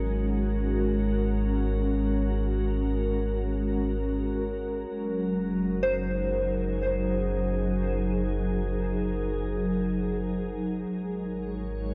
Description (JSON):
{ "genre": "ambient", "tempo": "free time", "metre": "none", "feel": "none", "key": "Gb lydian", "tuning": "A4 = 440 Hz", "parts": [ { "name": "glassy FM pad", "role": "sustained chords", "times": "0.0-11.9 s", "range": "Gb3 to Db5", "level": "-31 LUFS", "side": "equal", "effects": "ensemble chorus, built-in reverb" }, { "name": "warm sub bass", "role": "bass", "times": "0.0-11.9 s", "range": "Gb1 to Ab1", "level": "-33 LUFS", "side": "equal", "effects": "tube saturation" }, { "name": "soft synth bell", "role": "arpeggios", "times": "5.8-10.9 s", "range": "C5", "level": "-34 LUFS", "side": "equal", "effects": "chorus, diffuse ambient delay" } ], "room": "wet cathedral reverb, RT60 6.0 s", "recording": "in a vast, echoing space", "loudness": "-28 LUFS", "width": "mono", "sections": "0.0-11.9 A section", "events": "none", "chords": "0.0 Ab9sus4; 4.9 Gb69; 10.9 Ab9sus4" }